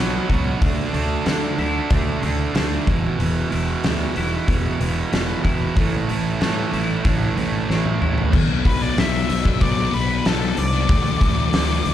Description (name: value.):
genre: quiet-loud alternative rock.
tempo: 93 BPM.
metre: 4/4.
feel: straight.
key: unclear.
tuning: A4 = 440 Hz.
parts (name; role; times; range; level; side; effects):
twelve-string electric guitar; arpeggios; 0.0-8.3 s; E2 to F#4; -31 LUFS; left 6 dB; wide subtle chorus.
thick fuzz guitar; riff; 0.0-8.3 s; E2 to D4; -22 LUFS; right 5 dB; distortion.
fuzz fingered electric bass; bass; 0.0-11.9 s; E1 to D3; -25 LUFS; equal; overdrive.
oversized low-tuned drum kit; drums; 0.3-11.9 s; crash cymbal, hi-hat, kick drum, snare drum, toms; -22 LUFS; equal; none.
thick fuzz guitar; riff; 8.3-11.9 s; B2 to D4; -24 LUFS; left 13 dB; distortion.
octave-fuzz lead guitar; melody; 8.7-11.9 s; A4 to E5; -25 LUFS; left 2 dB; distortion, tape echo.
room: little or no reverb.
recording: live gig heard through the venue's PA, club reverb.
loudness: -18 LUFS.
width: side -11 dB against mid.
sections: 0.0-8.3 A section; 8.3-11.9 B section.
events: drum fill 7.7-8.3; lead electric guitar solo 8.3-11.9.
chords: 0.0 Bm; 0.6 Dsus2; 2.9 Em; 5.8 A7sus4; 8.3 Bm; 10.9 Dsus2.